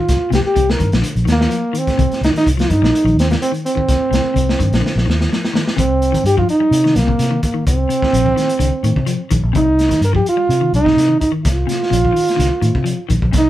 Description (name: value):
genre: afrobeat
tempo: 127 BPM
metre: 4/4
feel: straight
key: C minor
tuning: A4 = 443 Hz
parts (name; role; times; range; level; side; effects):
- trombone with bucket mute; melody; 0.0-13.5 s; Bb3 to Bb4; -16 LUFS; right 2 dB; none
- clean electric guitar; arpeggios; 0.0-13.5 s; C3 to G3; -24 LUFS; left 4 dB; spring reverb
- vintage muted fingered electric bass; bass; 0.1-13.5 s; Bb1 to C3; -17 LUFS; equal; none
- crunchy breakbeat drum kit; drums; 0.1-13.5 s; hi-hat, kick drum, snare drum; -20 LUFS; equal; none
room: light reverb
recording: band playing live in one room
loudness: -13 LUFS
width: side -13 dB against mid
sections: 0.0-5.8 A section; 5.8-13.5 B section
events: drum fill 4.8-5.8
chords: 0.0 Cm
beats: | 0.08 0.55 1.03 1.50 | 1.98 2.45 2.93 3.40 | 3.88 4.35 4.82 5.30 | 5.77 6.24 6.72 7.19 | 7.66 8.13 8.61 9.08 | 9.55 10.03 10.50 10.97 | 11.45 11.92 12.39 12.87 | 13.34